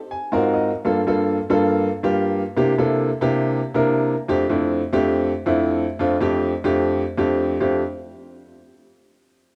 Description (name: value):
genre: jazz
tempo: 140 BPM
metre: 4/4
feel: straight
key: F major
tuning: A4 = 440 Hz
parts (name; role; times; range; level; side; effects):
- clear upright piano; solo; 0.1-7.8 s; F2 to Ab5; -21 LUFS; equal; none
room: light reverb, small room ambience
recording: rough home demo mix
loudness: -20 LUFS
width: mono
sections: 0.0-7.6 A section; 7.6-9.3 B section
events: upright piano fill 0.0-0.7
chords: 0.0 Ab13; 0.7 Gm9; 2.5 C7; 4.2 F69